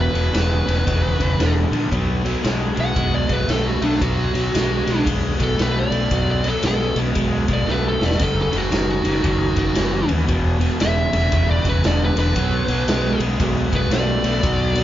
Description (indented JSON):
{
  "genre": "blues rock power trio and southern rock",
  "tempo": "115 BPM",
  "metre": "4/4",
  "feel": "swing 63% on 8ths",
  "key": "unclear",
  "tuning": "A4 = 441 Hz",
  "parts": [
    { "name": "fuzz lead guitar", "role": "melody", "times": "0.0-14.8 s", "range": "D4 to F#5", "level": "-23 LUFS", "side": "right 1 dB", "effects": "distortion" },
    { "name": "crunchy overdriven guitar", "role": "riff", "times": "0.0-14.8 s", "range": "E2 to A3", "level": "-22 LUFS", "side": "equal", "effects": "none" },
    { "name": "growling fingered electric bass", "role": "bass", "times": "0.0-14.8 s", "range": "E1 to D#2", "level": "-22 LUFS", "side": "equal", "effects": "overdrive" },
    { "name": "raw garage drum kit", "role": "drums", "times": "0.2-14.8 s", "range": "kick drum, ride cymbal, snare drum, splash cymbal", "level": "-24 LUFS", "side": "equal", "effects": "none" }
  ],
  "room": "moderate large studio reverb, RT60 1.4 s",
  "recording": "band playing live in one room, nothing above 7.5 kHz",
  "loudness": "-17 LUFS",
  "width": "side -12 dB against mid",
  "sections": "0.0-14.8 A section",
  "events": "lead electric guitar solo 0.0-14.8; drum fill 7.7-8.2",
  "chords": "0.0 E5; 1.9 B5; 8.2 F#5; 10.3 E5; 12.4 B5"
}